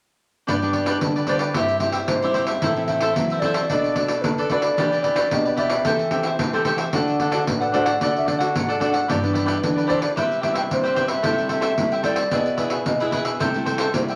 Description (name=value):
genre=samba and choro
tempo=111 BPM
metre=4/4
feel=straight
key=G major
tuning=A4 = 440 Hz
part: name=cavaquinho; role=accompaniment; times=0.5-14.2 s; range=D4 to G5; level=-26 LUFS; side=equal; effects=none
part: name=nylon-string guitar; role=accompaniment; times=0.5-14.2 s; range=F#2 to G#4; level=-29 LUFS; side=equal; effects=none
part: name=nylon-string guitar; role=bass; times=0.5-14.2 s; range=G2 to F#3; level=-32 LUFS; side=equal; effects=none
part: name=pandeiro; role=percussion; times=0.5-14.2 s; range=none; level=-29 LUFS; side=equal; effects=none
part: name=wooden flute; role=melody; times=1.0-14.0 s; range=B4 to G5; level=-26 LUFS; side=equal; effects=none
room=wet studio reverb, RT60 0.6 s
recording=none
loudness=-21 LUFS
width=mono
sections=0.5-14.2 A section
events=none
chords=0.5 G; 1.6 C/G; 2.6 Am; 3.7 Bm7; 4.8 Em7; 5.9 Am7/E; 6.9 D; 9.1 G6; 10.2 Cmaj7; 11.2 Am7/C; 12.3 E/B; 13.4 Am7/C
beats=| 0.48 1.02 1.55 2.09 | 2.63 3.17 3.71 4.25 | 4.78 5.32 5.86 6.40 | 6.94 7.48 8.02 8.55 | 9.09 9.63 10.17 10.71 | 11.25 11.79 12.32 12.86 | 13.40 13.94